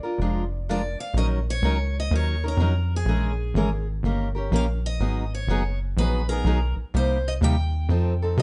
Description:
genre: acoustic string swing (jazz manouche)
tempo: 124 BPM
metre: 4/4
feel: swing 65% on 8ths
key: unclear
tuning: A4 = 440 Hz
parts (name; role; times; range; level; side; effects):
- picked steel-string acoustic guitar; melody; 0.0-8.4 s; Ab4 to G5; -35 LUFS; equal; none
- picked steel-string acoustic guitar; accompaniment; 0.0-8.4 s; C3 to Bb4; -30 LUFS; equal; none
- tight sequencer bass; bass; 0.2-8.4 s; F1 to C3; -26 LUFS; equal; none
room: light reverb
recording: nothing above 10.9 kHz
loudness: -24 LUFS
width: mono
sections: 0.0-1.2 A section; 1.2-8.4 B section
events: none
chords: 0.0 Bb7; 1.2 Ebm9; 3.1 Bbm7b5; 4.0 Eb7; 5.0 Abm9; 6.9 Cm7; 7.9 F7

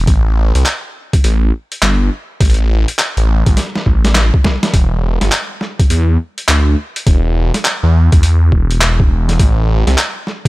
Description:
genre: glitch hop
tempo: 103 BPM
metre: 4/4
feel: swing 64% on 16ths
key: E minor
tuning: A4 = 438 Hz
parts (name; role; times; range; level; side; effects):
- phased detuned saw bass; bass; 0.0-10.0 s; E1 to E2; -12 LUFS; equal; phaser, tube saturation
- boom bap sampler-style drum kit; drums; 0.1-10.5 s; handclaps, hi-hat, snare drum; -17 LUFS; equal; overdrive, small room ambience
- electronic kick drum; drums; 0.1-10.5 s; none; -11 LUFS; equal; overdrive, small room ambience
room: little or no reverb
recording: none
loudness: -11 LUFS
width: side -19 dB against mid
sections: 0.0-10.5 A section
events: drum fill 3.6-4.7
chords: none

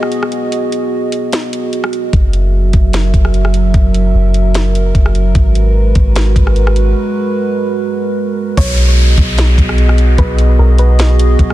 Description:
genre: hip hop, atmospheric cloud-rap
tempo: 149 BPM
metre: 4/4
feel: half-time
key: B major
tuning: A4 = 439 Hz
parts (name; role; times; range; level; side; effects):
- dark analog pad; sustained chords; 0.0-11.5 s; F#3 to E5; -17 LUFS; right 2 dB; chorus, sidechain pumping
- trap drum kit; drums; 0.0-11.5 s; crash cymbal, hi-hat, kick drum, rim click, snare drum; -14 LUFS; equal; none
- soft 808-style bass; bass; 2.1-11.5 s; F#1 to B1; -10 LUFS; equal; none
- soft round pluck; melody; 8.6-11.4 s; A#4 to C#5; -24 LUFS; equal; chorus, low-pass filter, ping-pong delay
- downlifter; sound effects; 8.6-11.5 s; none; -21 LUFS; equal; none
room: digital ambience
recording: dense, heavily limited modern master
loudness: -10 LUFS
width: side -15 dB against mid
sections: 0.0-8.6 A section; 8.6-11.5 B section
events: break 0.0-2.1, 7.0-8.6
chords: 0.0 B6; 2.1 F#7; 5.4 G#m9; 8.6 B6

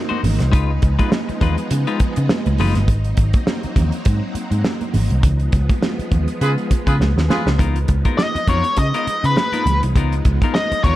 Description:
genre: funk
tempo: 102 BPM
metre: 4/4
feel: swing 56% on 16ths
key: unclear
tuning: A4 = 440 Hz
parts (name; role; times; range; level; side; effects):
- string machine, violins; sustained chords; 0.0-11.0 s; F3 to Eb4; -27 LUFS; equal; ensemble chorus
- clean electric guitar; accompaniment; 0.1-2.8, 7.6-11.0 s; Ab3 to C5; -26 LUFS; left 7 dB; spring reverb
- congas; percussion; 0.1-11.0 s; none; -27 LUFS; right 5 dB; none
- vintage muted picked electric bass; bass; 0.2-11.0 s; Gb1 to Db3; -18 LUFS; equal; none
- damped 70s drum kit; drums; 0.2-11.0 s; hi-hat, kick drum, snare drum; -19 LUFS; equal; none
- clear horn section; second line; 6.4-7.5 s; F4 to Cb5; -24 LUFS; right 1 dB; none
- octave-fuzz lead guitar; melody; 8.2-11.0 s; Cb5 to Eb5; -20 LUFS; left 2 dB; distortion
room: little or no reverb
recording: none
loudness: -15 LUFS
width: side -15 dB against mid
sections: 0.0-7.6 A section; 7.6-11.0 B section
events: band accent 5.2-7.6; drum fill 7.0-7.6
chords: 0.0 Ab9; 0.5 Db9; 2.9 Ab9; 5.2 Db9; 7.6 Db13

